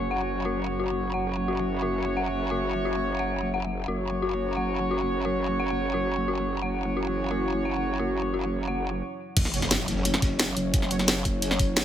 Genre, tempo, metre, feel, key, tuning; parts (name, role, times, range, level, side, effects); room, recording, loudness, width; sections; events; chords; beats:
dark technical drum and bass; 175 BPM; 4/4; straight; A4 = 439 Hz
dark analog pad; sustained chords; 0.0-11.8 s; F#3 to E5; -33 LUFS; equal; chorus, sidechain pumping
warm brass ensemble; stabs; 0.0-11.0 s; C#4 to C#5; -30 LUFS; right 2 dB; low-pass filter, dub echo
growl bass; bass; 0.0-11.8 s; F#1; -31 LUFS; equal; chorus, tube saturation, sidechain pumping
dark detuned synth bell; arpeggios; 0.1-8.8 s; F#4 to F#5; -31 LUFS; left 4 dB; chorus, sidechain pumping, dub echo
crunchy breakbeat drum kit; drums; 9.4-11.8 s; hi-hat, snare drum; -37 LUFS; equal
drum and bass drum kit; drums; 9.4-11.8 s; crash cymbal, hi-hat, snare drum; -25 LUFS; equal; studio reverb
electronic kick drum; drums; 9.4-11.7 s; -24 LUFS; equal; studio reverb
impact; sound effects; 9.4-10.7 s; -34 LUFS; equal
light reverb, studio reverb; -24 LUFS; side -10 dB against mid
0.0-9.4 A section; 9.4-11.8 B section
break 9.0-9.4; drop 9.4-11.8; impact 9.4-10.7
0.0 F#5
0.11 0.45 0.80 | 1.14 1.48 1.82 2.17 | 2.51 2.85 3.19 3.54 | 3.88 4.22 4.57 4.91 | 5.25 5.59 5.94 6.28 | 6.62 6.97 7.31 7.65 | 8.00 8.34 8.68 9.02 | 9.37 9.71 10.05 10.39 | 10.74 11.08 11.42 11.77